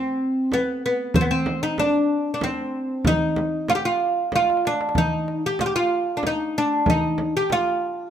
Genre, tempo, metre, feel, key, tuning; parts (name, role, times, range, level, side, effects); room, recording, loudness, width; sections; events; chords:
Arabic maqam ensemble; 94 BPM; 3/4; straight; A4 = 439 Hz
oud; melody; 0.0-8.1 s; B3 to G4; -21 LUFS; equal; plate reverb
darbuka; percussion; 0.5-7.7 s; -28 LUFS; equal
frame drum; percussion; 0.5-7.7 s; -25 LUFS; right 1 dB
moderate studio reverb, RT60 0.5 s; -20 LUFS; side -9 dB against mid
0.0-8.1 A section
drum fill 4.3-5.0